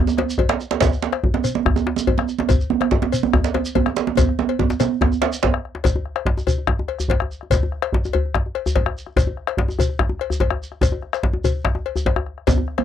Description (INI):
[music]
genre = west african traditional, West African drum ensemble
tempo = 144 BPM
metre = 4/4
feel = straight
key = none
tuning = none
[part]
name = djembe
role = percussion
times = 0.1-5.5, 12.5-12.8 s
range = none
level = -21 LUFS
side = right 11 dB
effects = none
[part]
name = shekere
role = percussion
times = 0.1-12.6 s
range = none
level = -27 LUFS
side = right 1 dB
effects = none
[part]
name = bombo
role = percussion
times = 0.2-12.8 s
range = none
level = -22 LUFS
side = left 1 dB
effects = none
[part]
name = cowbell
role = percussion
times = 0.2-12.8 s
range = none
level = -25 LUFS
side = left 14 dB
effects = none
[part]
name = djembe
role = percussion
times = 0.2-12.7 s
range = none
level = -23 LUFS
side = left 2 dB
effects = none
[sound]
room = light reverb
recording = dry, close 1970s-style studio recording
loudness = -18 LUFS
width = side -9 dB against mid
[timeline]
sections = 0.0-5.8 A section; 5.8-12.8 B section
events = drum fill 4.2-5.8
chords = none